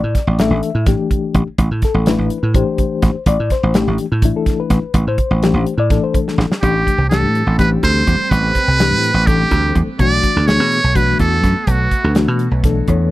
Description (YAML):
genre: electric jazz fusion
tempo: 250 BPM (eighths)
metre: 7/8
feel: straight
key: A minor, A dorian from 6.6 s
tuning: A4 = 440 Hz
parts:
  - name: reed electric piano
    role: accompaniment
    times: 0.0-13.1 s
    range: E3 to E5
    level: -19 LUFS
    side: left 6 dB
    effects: overdrive, fast tremolo
  - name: dry thumbed slap bass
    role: bass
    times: 0.0-13.1 s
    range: A1 to B2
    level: -16 LUFS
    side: right 1 dB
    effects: none
  - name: modern studio drum kit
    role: drums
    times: 0.1-13.0 s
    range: hi-hat, kick drum, snare drum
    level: -17 LUFS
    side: right 1 dB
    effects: none
  - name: trumpet with metal mute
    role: melody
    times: 6.6-12.2 s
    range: F#4 to D5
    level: -17 LUFS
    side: right 2 dB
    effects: none
  - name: analog string pad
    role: sustained chords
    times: 7.1-13.1 s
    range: G3 to C4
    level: -28 LUFS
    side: right 1 dB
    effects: ensemble chorus
room: little or no reverb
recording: dry, close 1970s-style studio recording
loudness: -13 LUFS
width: side -16 dB against mid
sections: 0.0-6.6 A section; 6.6-13.1 B section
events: drum fill 6.3-6.6; reed electric piano fill 12.6-13.1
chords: 0.0 Am9; 6.6 Am11; 10.0 Bm11